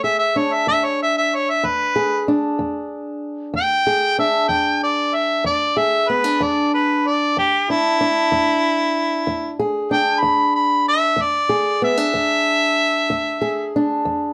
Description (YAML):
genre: acoustic country blues, solo or duo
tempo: 63 BPM (dotted quarters)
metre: 12/8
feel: straight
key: E mixolydian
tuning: A4 = 440 Hz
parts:
  - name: mellow harmonica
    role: melody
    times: 0.0-13.7 s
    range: E4 to B5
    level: -20 LUFS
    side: equal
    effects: none
  - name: fingerpicked old ladder-braced acoustic guitar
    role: accompaniment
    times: 0.0-14.3 s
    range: E2 to G#4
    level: -24 LUFS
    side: equal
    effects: none
room: light reverb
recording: close, detailed microphones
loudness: -19 LUFS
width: mono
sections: 0.0-14.3 A section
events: none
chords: 0.0 E7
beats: 0.68 1.63 2.59 | 3.54 4.50 5.45 6.41 | 7.36 8.31 9.27 10.23 | 11.18 12.14 13.10 14.06